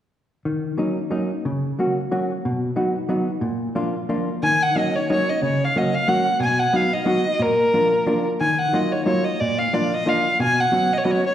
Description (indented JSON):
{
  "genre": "musette",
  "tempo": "181 BPM",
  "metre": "3/4",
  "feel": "swing 55% on 8ths",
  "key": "Eb minor",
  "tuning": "A4 = 440 Hz",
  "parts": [
    { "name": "hollow-body jazz guitar", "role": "accompaniment", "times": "0.5-11.2 s", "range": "Bb2 to Gb4", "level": "-21 LUFS", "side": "equal", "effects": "none" },
    { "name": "warm violin", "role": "melody", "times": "4.4-11.3 s", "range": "Bb4 to Ab5", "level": "-20 LUFS", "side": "equal", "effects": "none" }
  ],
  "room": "wet recital hall reverb, RT60 1.5 s",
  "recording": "heard from further back in the room",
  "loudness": "-18 LUFS",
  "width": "side -10 dB against mid",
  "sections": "0.5-4.4 A section; 4.4-11.3 B section",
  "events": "none",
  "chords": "0.5 Ebm7; 1.5 Gb/Db; 2.4 B; 3.4 Bb; 4.4 Ebm7; 5.4 Gb/Db; 6.4 B; 7.4 Bb; 8.4 Ebmadd9; 9.4 Bb; 10.4 Bsus2",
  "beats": "| 0.45 0.79 1.12 | 1.46 1.79 2.12 | 2.45 2.78 3.10 | 3.43 3.77 4.10 | 4.43 4.76 5.10 | 5.43 5.75 6.08 | 6.41 6.74 7.06 | 7.40 7.73 8.06 | 8.40 8.74 9.07 | 9.40 9.74 10.07 | 10.40 10.73 11.06"
}